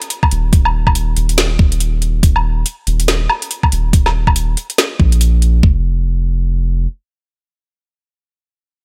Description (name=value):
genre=deep dubstep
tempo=141 BPM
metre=4/4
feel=swing 60% on 16ths, half-time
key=unclear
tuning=A4 = 439 Hz
part: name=garage drum kit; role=drums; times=0.0-5.5 s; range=hi-hat, snare drum, woodblock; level=-19 LUFS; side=equal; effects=overdrive
part: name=electronic kick drum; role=drums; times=0.2-5.7 s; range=none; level=-14 LUFS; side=equal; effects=overdrive
part: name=soft dub sub bass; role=bass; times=0.3-6.9 s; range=Eb1 to Bb1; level=-17 LUFS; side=equal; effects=none
room=digital ambience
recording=none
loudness=-15 LUFS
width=mono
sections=0.0-5.6 A section; 5.6-8.8 B section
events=none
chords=none